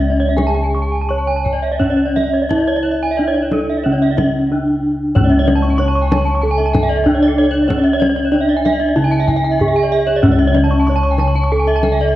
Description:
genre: Balinese gamelan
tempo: 93 BPM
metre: 4/4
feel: uneven beats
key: C# pelog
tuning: A4 = 440 Hz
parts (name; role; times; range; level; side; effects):
- gamelan-type bronze metallophone; melody; 0.0-12.2 s; C#4 to C#5; -17 LUFS; equal; none
- gamelan-type bronze metallophone; arpeggios; 0.0-12.2 s; A4-20c to C#6; -23 LUFS; left 3 dB; none
- gamelan-type bossed gongs; bass; 0.0-12.2 s; C#2 to E4-30c; -18 LUFS; left 1 dB; none
- gamelan-type bronze metallophone; arpeggios; 0.2-12.0 s; A4-20c to C#6; -21 LUFS; right 4 dB; none
- kendang; percussion; 0.4-12.0 s; none; -20 LUFS; left 1 dB; none
room: moderate scoring stage reverb, RT60 2.0 s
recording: worn, warbling old tape, cassette tape, warbly pitch drift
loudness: -13 LUFS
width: side -14 dB against mid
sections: 0.0-5.1 A section; 5.1-12.2 B section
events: none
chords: none

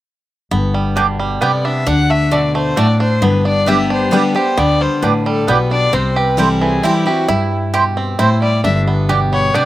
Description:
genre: bluegrass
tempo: 133 BPM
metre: 3/4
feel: straight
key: G major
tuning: A4 = 440 Hz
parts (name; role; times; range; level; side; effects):
- picked steel-string acoustic guitar; accompaniment; 0.5-9.7 s; G2 to G4; -16 LUFS; left 2 dB; none
- bluegrass banjo; arpeggios; 0.5-9.7 s; D3 to G4; -20 LUFS; right 4 dB; none
- upright bass; bass; 0.5-9.5 s; G1 to G2; -21 LUFS; equal; none
- mandolin; stabs; 1.0-9.6 s; A3 to A5; -18 LUFS; right 5 dB; none
- dark fiddle; melody; 1.4-9.7 s; E4 to F#5; -19 LUFS; left 2 dB; none
room: little or no reverb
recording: recorded outdoors, with no room sound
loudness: -12 LUFS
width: side -14 dB against mid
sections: 0.5-9.7 A section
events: none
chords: 0.5 G; 1.9 D; 3.2 G; 5.9 C; 8.6 G

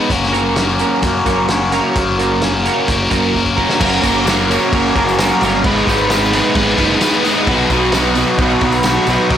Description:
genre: indie rock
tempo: 131 BPM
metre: 4/4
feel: straight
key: unclear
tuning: A4 = 440 Hz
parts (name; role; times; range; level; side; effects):
- cranked stack guitar; riff; 0.0-9.4 s; B2 to B4; -16 LUFS; left 4 dB; overdrive, phaser
- electric guitar through a small old amp; riff; 0.0-9.4 s; B2 to B4; -18 LUFS; right 6 dB; analog chorus, slapback echo
- growling picked electric bass; bass; 0.1-9.4 s; F#1 to F#2; -21 LUFS; equal; overdrive
- loose indie drum kit; drums; 0.1-9.4 s; crash cymbal, hi-hat, kick drum, snare drum; -19 LUFS; equal; none
- tambourine; percussion; 3.9-9.4 s; none; -32 LUFS; right 6 dB; none
room: light reverb, small room ambience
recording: blown-out, overdriven recording, overdrive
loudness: -12 LUFS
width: side -10 dB against mid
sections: 0.0-3.8 A section; 3.8-9.4 B section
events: drum fill 3.3-3.8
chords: 0.1 F#; 5.6 G#m

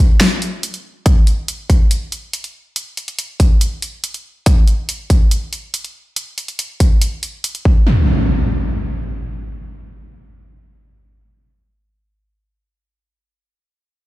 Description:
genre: heavy wobble dubstep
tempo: 141 BPM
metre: 4/4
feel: half-time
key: none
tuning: none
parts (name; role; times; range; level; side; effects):
- big-room dance drum kit; drums; 0.2-7.6 s; hi-hat, snare drum; -20 LUFS; equal; overdrive
- electronic kick drum; drums; 1.1-7.7 s; none; -11 LUFS; equal; overdrive
- impact; sound effects; 7.9-12.6 s; none; -17 LUFS; equal; none
room: digital ambience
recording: played on a big sound system in a bare room, stone room reverb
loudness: -15 LUFS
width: side -17 dB against mid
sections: 0.0-7.9 A section; 7.9-11.3 B section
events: none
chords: none

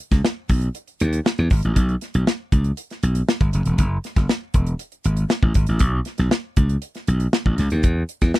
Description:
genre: polished 1980s jazz-funk pop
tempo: 118 BPM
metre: 4/4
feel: straight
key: unclear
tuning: A4 = 440 Hz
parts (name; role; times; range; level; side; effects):
- slap bass; bass; 0.1-8.3 s; E1 to E2; -19 LUFS; equal; none
- tight funk drum kit; drums; 0.1-8.4 s; hi-hat, kick drum, snare drum; -20 LUFS; equal; none
room: little or no reverb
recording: none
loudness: -18 LUFS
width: side -17 dB against mid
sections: 0.0-8.4 A section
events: none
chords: none

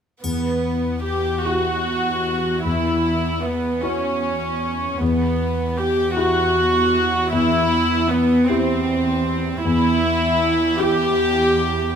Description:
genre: cinematic, emotional film score for orchestra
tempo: 51 BPM (dotted quarters)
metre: 6/8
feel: rubato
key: E minor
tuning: A4 = 440 Hz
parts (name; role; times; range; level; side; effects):
- rich studio viola section; accompaniment; 0.2-12.0 s; B3 to G4; -19 LUFS; equal; none
- warm concert grand piano; accompaniment; 0.2-12.0 s; E2 to G4; -24 LUFS; left 3 dB; none
- dark studio cello section; bass; 0.2-12.0 s; E2; -26 LUFS; right 4 dB; none
- triangle; percussion; 0.2-1.8 s; none; -36 LUFS; right 1 dB; none
room: light reverb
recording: close, detailed microphones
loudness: -17 LUFS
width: side -7 dB against mid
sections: 0.2-12.0 A section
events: none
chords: 0.2 Em; 2.6 C#madd11/E; 5.0 Em

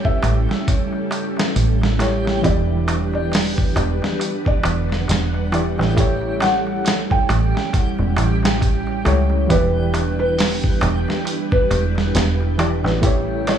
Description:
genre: trip hop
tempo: 68 BPM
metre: 4/4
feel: swing 58% on 16ths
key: E dorian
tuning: A4 = 441 Hz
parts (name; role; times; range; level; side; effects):
- overdriven reed electric piano; accompaniment; 0.0-13.6 s; E3 to D5; -25 LUFS; equal; fast tremolo, vintage 12-bit sampler grit, tape echo
- string machine, cellos; sustained chords; 0.0-13.6 s; G3 to F#5; -25 LUFS; right 1 dB; ensemble chorus
- deep dub fingered electric bass; bass; 0.0-13.6 s; E1 to C#2; -20 LUFS; right 1 dB; none
- dusty soul sampler-style drum kit; drums; 0.0-13.6 s; hi-hat, kick drum, snare drum; -21 LUFS; right 1 dB; studio reverb
- backwards swelling texture; texture; 0.0-13.6 s; G4; -32 LUFS; left 2 dB; built-in reverb
- felt-muted upright piano; melody; 0.1-13.6 s; B4 to G5; -26 LUFS; equal; tape echo
- darbuka; percussion; 0.2-13.6 s; none; -28 LUFS; right 1 dB; none
room: digital ambience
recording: studio ambience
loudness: -16 LUFS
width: side -9 dB against mid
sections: 0.0-13.6 A section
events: none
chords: 0.0 A7; 2.4 Em7; 6.0 A7; 9.5 Em7; 13.0 A7

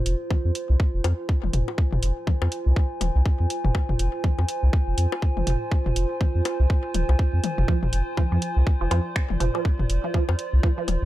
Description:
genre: minimal techno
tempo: 122 BPM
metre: 4/4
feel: swing 59% on 16ths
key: F dorian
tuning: A4 = 437 Hz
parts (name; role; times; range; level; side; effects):
- warbly tape-like pad; texture; 0.0-11.1 s; F4 to Ab5; -31 LUFS; right 2 dB; chorus, built-in reverb, sidechain pumping
- round analog bass; bass; 0.1-11.1 s; Eb1 to F2; -21 LUFS; equal; sidechain pumping
- garage drum kit; drums; 0.1-11.0 s; finger snaps, hi-hat; -30 LUFS; right 2 dB; overdrive
- electronic kick drum; drums; 0.3-10.8 s; none; -21 LUFS; equal; overdrive
- electronic toms and bongos; percussion; 0.3-11.0 s; none; -30 LUFS; left 4 dB; ping-pong delay
- resonant blip pluck; riff; 7.7-10.8 s; F3; -29 LUFS; right 6 dB; phaser, sidechain pumping, digital delay
room: light reverb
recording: dark, warm production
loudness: -21 LUFS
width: side -15 dB against mid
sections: 0.0-11.1 A section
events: none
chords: 0.0 Fm

